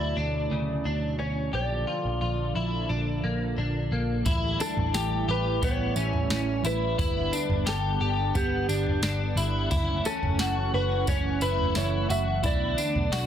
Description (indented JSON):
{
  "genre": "dream pop",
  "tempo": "88 BPM",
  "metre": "4/4",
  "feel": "straight",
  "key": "unclear",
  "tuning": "A4 = 443 Hz",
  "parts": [
    { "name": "mellow electric guitar", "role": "melody", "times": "0.0-13.3 s", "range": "G4 to E5", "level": "-32 LUFS", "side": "equal", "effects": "tape echo" },
    { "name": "warm analog pad", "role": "sustained chords", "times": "0.0-13.3 s", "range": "B2 to F#5", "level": "-33 LUFS", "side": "right 3 dB", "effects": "lush chorus" },
    { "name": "electric guitar at the edge of break-up", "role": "arpeggios", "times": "0.0-13.3 s", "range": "C#3 to G4", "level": "-30 LUFS", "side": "left 2 dB", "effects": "ensemble chorus, tape echo" },
    { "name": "vintage muted picked electric bass", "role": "bass", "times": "0.0-13.3 s", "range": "F#1 to D2", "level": "-29 LUFS", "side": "equal", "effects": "none" },
    { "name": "soft vintage rhythm box", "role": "drums", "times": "4.3-13.3 s", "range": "kick drum, snare drum, tambourine, toms", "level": "-30 LUFS", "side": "right 1 dB", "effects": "none" }
  ],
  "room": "light reverb, digital ambience",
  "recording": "dense, heavily limited modern master",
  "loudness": "-24 LUFS",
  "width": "side -9 dB against mid",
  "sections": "0.0-4.3 A section; 4.3-13.3 B section",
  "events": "none",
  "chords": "0.0 Dadd9; 1.5 Bbmaj7; 4.3 A7; 7.0 Gmaj7; 9.7 F#m7; 12.4 Bm7"
}